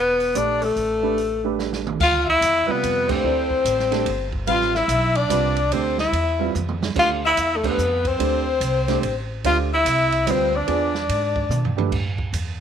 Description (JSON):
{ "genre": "modal jazz", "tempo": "145 BPM", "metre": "3/4", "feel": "swing 64% on 8ths", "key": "D dorian", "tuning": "A4 = 440 Hz", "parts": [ { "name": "breathy tenor saxophone", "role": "melody", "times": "0.0-11.8 s", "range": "A3 to F4", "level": "-21 LUFS", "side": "equal", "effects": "none" }, { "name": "growling alto saxophone", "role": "second line", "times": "0.0-11.8 s", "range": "A4 to F5", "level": "-25 LUFS", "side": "left 11 dB", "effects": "none" }, { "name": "upright bass", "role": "bass", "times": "0.0-12.6 s", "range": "E1 to B2", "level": "-26 LUFS", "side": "equal", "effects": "none" }, { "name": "open jazz drum kit", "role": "drums", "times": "0.2-12.5 s", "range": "crash cymbal, hi-hat, kick drum, ride cymbal, snare drum, toms", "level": "-29 LUFS", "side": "right 4 dB", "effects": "none" }, { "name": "warm baby grand piano", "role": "accompaniment", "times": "0.3-11.9 s", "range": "C3 to D5", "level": "-26 LUFS", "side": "right 14 dB", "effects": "none" } ], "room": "moderate spring reverb, RT60 1.7 s, small room ambience", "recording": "1960s-style stereo with parts hard left and right", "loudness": "-18 LUFS", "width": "side -8 dB against mid", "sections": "0.0-2.0 A section; 2.0-11.9 B section", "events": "drum fill 1.6-2.0, 6.5-7.0, 11.5-11.9; band accent 3.0, 7.6", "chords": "0.0 A9sus4; 2.0 Dm11; 10.7 E7b9; 11.9 A5" }